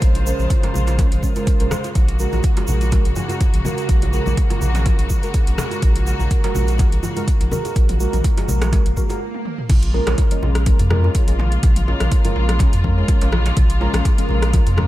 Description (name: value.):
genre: afro house.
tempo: 124 BPM.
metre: 4/4.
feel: swing 54% on 16ths.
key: Bb minor.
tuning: A4 = 440 Hz.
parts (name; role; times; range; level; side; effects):
muted studio string section; sustained chords; 0.0-14.9 s; Db3 to C5; -27 LUFS; equal; sidechain pumping.
deep mellow chord stab; stabs; 0.0-14.9 s; Ab3 to Bb4; -26 LUFS; right 1 dB; chorus, phaser, sidechain pumping, tape echo.
warm sub bass; bass; 0.0-14.9 s; Bb1 to F2; -19 LUFS; equal; sidechain pumping.
deep house drum kit; drums; 0.0-14.9 s; crash cymbal, hi-hat, rim click, toms; -29 LUFS; left 1 dB; overdrive.
electronic kick drum; drums; 0.0-14.6 s; none; -17 LUFS; equal; overdrive.
congas; percussion; 0.0-14.9 s; none; -28 LUFS; left 3 dB; none.
tube shaker; percussion; 0.0-9.2 s; none; -36 LUFS; right 4 dB; none.
djembe; percussion; 0.1-14.9 s; none; -32 LUFS; right 3 dB; none.
swell; sound effects; 8.9-9.7 s; none; -32 LUFS; right 5 dB; none.
room: studio ambience.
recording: none.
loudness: -15 LUFS.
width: side -15 dB against mid.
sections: 0.0-9.7 A section; 9.7-14.9 B section.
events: swell 8.9-9.7; stop 9.2-9.7; drum fill 9.3-9.7; drop 9.7-14.9.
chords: 0.0 Bbm7; 2.0 Gbadd9/Bb; 9.7 Bbm7.